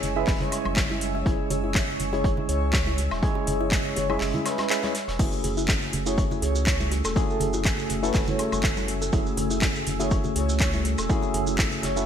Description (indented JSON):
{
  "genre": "deep house",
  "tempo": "122 BPM",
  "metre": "4/4",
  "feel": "swing 54% on 16ths",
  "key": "F# minor",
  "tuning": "A4 = 441 Hz",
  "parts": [
    { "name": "deep dark ambient pad", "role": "sustained chords", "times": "0.0-12.1 s", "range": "A3 to E6", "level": "-35 LUFS", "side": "equal", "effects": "chorus, built-in reverb, sidechain pumping" },
    { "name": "tine electric piano", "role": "stabs", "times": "0.0-12.1 s", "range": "G#3 to E5", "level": "-29 LUFS", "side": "equal", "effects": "slow stereo tremolo, sidechain pumping, ping-pong delay" },
    { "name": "round analog bass", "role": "bass", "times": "0.0-12.0 s", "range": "E1 to C#2", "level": "-30 LUFS", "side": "equal", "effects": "sidechain pumping" },
    { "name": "house drum kit", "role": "drums", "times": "0.0-11.9 s", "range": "crash cymbal, handclaps, hi-hat, woodblock", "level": "-30 LUFS", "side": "equal", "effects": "overdrive, gated reverb" },
    { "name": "loose indie drum kit", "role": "drums", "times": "0.0-12.0 s", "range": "hi-hat, snare drum", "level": "-40 LUFS", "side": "equal", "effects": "none" },
    { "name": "congas and bongos", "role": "percussion", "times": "0.0-11.9 s", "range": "none", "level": "-36 LUFS", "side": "right 4 dB", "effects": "none" },
    { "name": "breathy flute-like synth lead", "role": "melody", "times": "0.2-12.0 s", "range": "A4 to C#5", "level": "-35 LUFS", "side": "equal", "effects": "wide subtle chorus, ping-pong delay" },
    { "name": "soft round pluck", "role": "arpeggios", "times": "0.2-12.0 s", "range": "E4 to C#6", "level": "-35 LUFS", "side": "left 2 dB", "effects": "chorus, sidechain pumping, ping-pong delay" },
    { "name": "electronic kick drum", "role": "drums", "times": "0.3-11.7 s", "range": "none", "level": "-26 LUFS", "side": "equal", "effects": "overdrive" },
    { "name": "maracas", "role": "percussion", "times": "5.2-12.1 s", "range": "none", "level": "-37 LUFS", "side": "right 4 dB", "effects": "none" }
  ],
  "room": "light reverb",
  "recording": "bright 1980s-style digital production",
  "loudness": "-22 LUFS",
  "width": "side -8 dB against mid",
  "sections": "0.0-12.1 A section",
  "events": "kick drops out 4.2-5.2",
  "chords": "0.0 C#m; 5.2 F#m9"
}